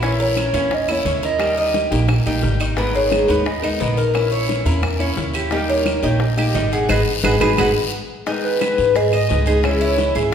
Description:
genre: latin, Cuban son and guajira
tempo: 175 BPM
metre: 4/4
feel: straight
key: G# minor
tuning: A4 = 442 Hz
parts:
  - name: picked steel-string acoustic guitar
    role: accompaniment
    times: 0.0-10.3 s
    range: C#3 to A#4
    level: -24 LUFS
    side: left 2 dB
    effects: none
  - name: Cuban tres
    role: arpeggios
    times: 0.0-10.3 s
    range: B3 to D#5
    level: -22 LUFS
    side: right 2 dB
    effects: none
  - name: upright bass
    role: bass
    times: 0.0-10.3 s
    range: G#1 to G#2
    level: -21 LUFS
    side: equal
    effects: none
  - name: bongos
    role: percussion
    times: 0.0-10.3 s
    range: none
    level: -28 LUFS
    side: left 4 dB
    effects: none
  - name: guiro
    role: percussion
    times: 0.0-10.3 s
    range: none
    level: -31 LUFS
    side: left 5 dB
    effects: none
  - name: hollow clarinet-like synth lead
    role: melody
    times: 0.2-10.1 s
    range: A#4 to F#5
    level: -21 LUFS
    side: equal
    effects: chorus, phaser
  - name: claves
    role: percussion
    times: 0.4-9.8 s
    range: none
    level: -30 LUFS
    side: right 3 dB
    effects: none
room: wet recital hall reverb, RT60 1.5 s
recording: recorded in a church or concert hall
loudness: -16 LUFS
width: side -8 dB against mid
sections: 0.0-8.3 A section; 8.3-10.3 B section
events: drum fill 6.9-8.3; band accent 6.9-8.3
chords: 0.0 A#dim; 1.4 D#; 2.8 G#madd9; 4.1 A#dim; 5.5 D#; 6.9 G#m7; 8.3 G#m; 9.6 C#m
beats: | 0.03 0.37 0.71 1.05 | 1.40 1.74 2.08 2.43 | 2.77 3.12 3.46 3.80 | 4.14 4.49 4.83 5.17 | 5.52 5.86 6.21 6.55 | 6.89 7.24 7.58 7.92 | 8.27 8.61 8.95 9.29 | 9.64 9.98 10.32

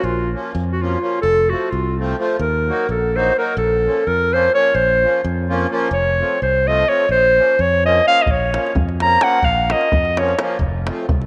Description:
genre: balkan folk, Balkan wedding band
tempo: 256 BPM (eighths)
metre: 5/8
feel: straight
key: Bb harmonic minor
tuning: A4 = 440 Hz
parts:
  - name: clear clarinet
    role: melody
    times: 0.0-10.4 s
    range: F4 to Bb5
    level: -19 LUFS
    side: equal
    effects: none
  - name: accordion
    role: accompaniment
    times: 0.0-11.1 s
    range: F3 to Gb4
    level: -26 LUFS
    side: equal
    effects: none
  - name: modern bright fingered electric bass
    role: bass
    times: 0.0-11.3 s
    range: F1 to F2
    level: -24 LUFS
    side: equal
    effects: none
  - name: davul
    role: percussion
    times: 8.3-11.3 s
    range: none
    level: -24 LUFS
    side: equal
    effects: none
room: wet spring reverb, RT60 2.4 s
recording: none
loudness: -17 LUFS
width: mono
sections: 0.0-11.3 A section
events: clarinet solo 0.0-11.3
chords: 0.0 Bbm; 1.2 F; 2.4 Ebm; 3.6 Bbm; 5.9 F; 7.1 Bbm; 10.6 F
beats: | 0.05 0.28 0.52 0.75 0.99 | 1.22 1.46 1.69 1.93 2.16 | 2.40 2.63 2.87 3.10 3.34 | 3.57 3.81 4.04 4.28 4.51 | 4.74 4.98 5.21 5.45 5.68 | 5.92 6.15 6.38 6.62 6.85 | 7.09 7.32 7.55 7.79 8.02 | 8.26 8.49 8.72 8.96 9.19 | 9.43 9.66 9.89 10.13 10.36 | 10.59 10.82 11.06

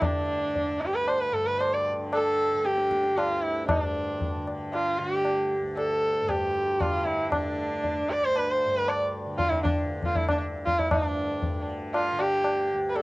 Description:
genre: indian classical, Hindustani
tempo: 116 BPM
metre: 7/4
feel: straight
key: D raga bageshri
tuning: A4 = 440 Hz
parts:
  - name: rich sarangi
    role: melody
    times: 0.0-13.0 s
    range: D4 to D5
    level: -25 LUFS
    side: right 1 dB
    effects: none
  - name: tanpura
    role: drone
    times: 0.0-13.0 s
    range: D2 to D3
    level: -35 LUFS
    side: left 1 dB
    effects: cassette tape
  - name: tabla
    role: percussion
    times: 0.0-13.0 s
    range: none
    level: -29 LUFS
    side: left 1 dB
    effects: none
room: moderate booth ambience, RT60 0.2 s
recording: home recording on cassette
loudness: -24 LUFS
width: side -21 dB against mid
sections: 0.0-10.9 A section; 10.9-13.0 B section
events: speeding up 0.0-13.0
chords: none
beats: | 0.03 0.56 1.08 1.60 2.13 2.65 3.17 | 3.69 4.21 4.73 5.25 5.77 6.29 6.81 | 7.32 7.84 8.36 8.87 9.38 9.90 10.41 | 10.92 11.43 11.94 12.45 12.96

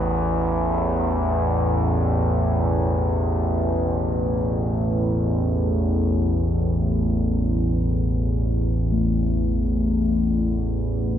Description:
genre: dark ambient drone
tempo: free time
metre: none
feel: none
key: unclear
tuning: A4 = 444 Hz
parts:
  - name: analog drone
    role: drone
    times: 0.0-11.2 s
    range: A1 to E2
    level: -20 LUFS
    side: equal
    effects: chorus
  - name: bronze singing bowl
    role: arpeggios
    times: 2.6-11.2 s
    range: B2 to A3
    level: -31 LUFS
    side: left 4 dB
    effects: none
room: wet huge ambient reverb, RT60 8.3 s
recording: dark, warm production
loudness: -20 LUFS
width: side -10 dB against mid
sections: 0.0-11.2 A section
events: none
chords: 0.0 Asus2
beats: free time

